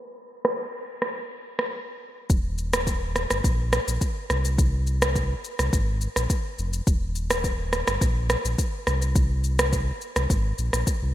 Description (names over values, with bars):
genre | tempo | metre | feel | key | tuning
afrobeats | 105 BPM | 4/4 | straight | Eb major | A4 = 440 Hz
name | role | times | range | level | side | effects
afro-pop drum kit | drums | 0.4-11.0 s | kick drum, rim click, shaker | -24 LUFS | equal | gated reverb
sub bass with octave | bass | 2.3-11.1 s | Eb1 to C2 | -25 LUFS | equal | none
room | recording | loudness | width
light reverb | bright 1980s-style digital production, low-pass filter | -22 LUFS | side -13 dB against mid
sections
0.0-2.3 A section; 2.3-11.1 B section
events
filter sweep 0.0-2.3; break 1.7-2.3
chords
none